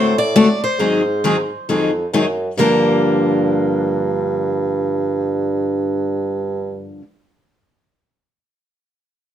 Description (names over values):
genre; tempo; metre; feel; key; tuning
acoustic string swing (jazz manouche); 135 BPM; 4/4; swing 62% on 8ths; G minor; A4 = 440 Hz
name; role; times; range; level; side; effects
picked steel-string acoustic guitar; melody; 0.0-7.0 s; Bb4 to D5; -21 LUFS; right 1 dB; plate reverb
picked steel-string acoustic guitar; accompaniment; 0.0-7.0 s; G2 to A4; -18 LUFS; left 3 dB; none
mellow bassoon; bass; 0.0-6.9 s; F2 to A2; -20 LUFS; right 3 dB; none
room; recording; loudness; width
moderate studio reverb, RT60 0.7 s; none; -15 LUFS; side -10 dB against mid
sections
0.0-2.6 A section; 2.6-6.1 B section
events
none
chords
0.0 D7; 0.8 Ab7; 2.6 Gm7